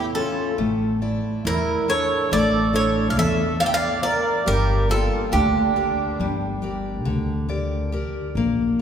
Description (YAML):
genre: greek folk, Greek bouzouki band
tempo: 139 BPM (eighths)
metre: 9/8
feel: straight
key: unclear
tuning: A4 = 438 Hz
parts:
  - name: Greek bouzouki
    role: melody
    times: 0.0-6.3 s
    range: G4 to G5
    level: -23 LUFS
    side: right 1 dB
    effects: none
  - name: accordion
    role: second line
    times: 0.0-6.3 s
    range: D4 to E5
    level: -28 LUFS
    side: right 2 dB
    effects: light tremolo tuning
  - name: picked steel-string acoustic guitar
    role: accompaniment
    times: 0.0-8.8 s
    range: D3 to E5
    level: -25 LUFS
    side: left 1 dB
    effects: none
  - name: upright bass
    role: bass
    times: 0.0-8.8 s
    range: G1 to E2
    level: -25 LUFS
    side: equal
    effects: none
room: wet church reverb, RT60 3.4 s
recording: recorded in a church or concert hall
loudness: -19 LUFS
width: side -8 dB against mid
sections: 0.0-8.8 A section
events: none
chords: 0.0 A; 0.6 Asus4; 4.5 Gm